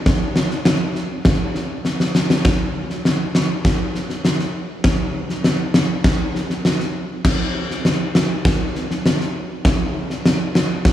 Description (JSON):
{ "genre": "rock", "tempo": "100 BPM", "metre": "4/4", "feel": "straight", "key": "none", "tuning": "none", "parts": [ { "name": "big rock drum kit", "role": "drums", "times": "0.1-10.9 s", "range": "crash cymbal, kick drum, snare drum", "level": "-17 LUFS", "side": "equal", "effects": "none" } ], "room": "moderate huge ambient reverb, RT60 4.3 s", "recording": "studio reverb", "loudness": "-17 LUFS", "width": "side -12 dB against mid", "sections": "0.0-2.5 A section; 2.5-10.9 B section", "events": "drum fill 1.9-2.5; build-up 2.5-10.9", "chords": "none", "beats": "| 0.07 0.67 1.26 1.86 | 2.46 3.06 3.66 4.26 | 4.86 5.46 6.06 6.66 | 7.26 7.86 8.46 9.06 | 9.66 10.26 10.86" }